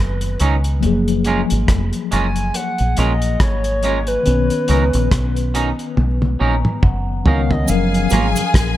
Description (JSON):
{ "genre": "lovers rock reggae", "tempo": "70 BPM", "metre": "4/4", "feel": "swing 58% on 16ths", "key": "F# major", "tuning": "A4 = 440 Hz", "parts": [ { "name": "reedy FM lead", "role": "melody", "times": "0.0-8.7 s", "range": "B4 to G#5", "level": "-24 LUFS", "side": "equal", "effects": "chorus, tape echo" }, { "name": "mellow tine electric piano", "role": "accompaniment", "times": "0.0-8.8 s", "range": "D#3 to A#5", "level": "-22 LUFS", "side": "left 4 dB", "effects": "medium stereo tremolo, tape echo" }, { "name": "deep dub fingered electric bass", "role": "bass", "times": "0.0-8.8 s", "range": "E#1 to C#2", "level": "-18 LUFS", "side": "equal", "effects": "none" }, { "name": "cloth-damped thuddy drum kit", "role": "drums", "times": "0.2-8.8 s", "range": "hi-hat, kick drum, rim click, toms", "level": "-19 LUFS", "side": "equal", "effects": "none" }, { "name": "twangy electric guitar", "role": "stabs", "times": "0.4-8.3 s", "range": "F#3 to A#4", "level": "-24 LUFS", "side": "right 5 dB", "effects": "none" }, { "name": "warm studio string section", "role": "second line", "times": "7.7-8.8 s", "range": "G#4 to G#5", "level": "-23 LUFS", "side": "left 3 dB", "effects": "none" }, { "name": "cabasa", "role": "percussion", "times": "7.7-8.5 s", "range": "none", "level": "-26 LUFS", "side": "right 10 dB", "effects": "none" }, { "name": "mellow tonewheel organ", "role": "accompaniment", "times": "7.9-8.4 s", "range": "F#2 to E#4", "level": "-24 LUFS", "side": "right 7 dB", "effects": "slow rotary speaker" } ], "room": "light reverb, small room ambience", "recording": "none", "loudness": "-15 LUFS", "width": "side -14 dB against mid", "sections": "0.0-7.7 A section; 7.7-8.8 B section", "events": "drum fill 6.0-7.7; tine electric piano fill 6.0-7.7", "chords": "0.0 Bmaj9; 0.8 F#maj9; 4.3 Bmaj9; 7.7 F#maj7" }